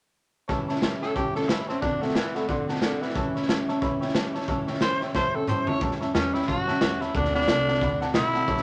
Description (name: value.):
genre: rockabilly.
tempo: 180 BPM.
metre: 4/4.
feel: swing 59% on 8ths.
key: A mixolydian.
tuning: A4 = 439 Hz.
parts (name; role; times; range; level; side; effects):
picked steel-string acoustic guitar; accompaniment; 0.5-8.6 s; A2 to F#4; -32 LUFS; equal; none.
tack piano; accompaniment; 0.5-8.6 s; C#5 to C6; -36 LUFS; equal; none.
raw garage drum kit; drums; 0.5-8.6 s; hi-hat, kick drum, snare drum, toms; -30 LUFS; equal; none.
growling tenor saxophone; melody; 1.0-8.6 s; D3 to C#5; -29 LUFS; equal; none.
upright bass; bass; 5.8-8.6 s; A1 to A2; -36 LUFS; equal; none.
room: moderate club reverb, RT60 0.6 s.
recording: none.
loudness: -26 LUFS.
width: mono.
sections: 0.5-5.8 A section; 5.8-8.6 B section.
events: drum fill 5.2-5.8.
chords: 0.5 A7; 1.8 D7; 3.2 A7; 7.1 D7.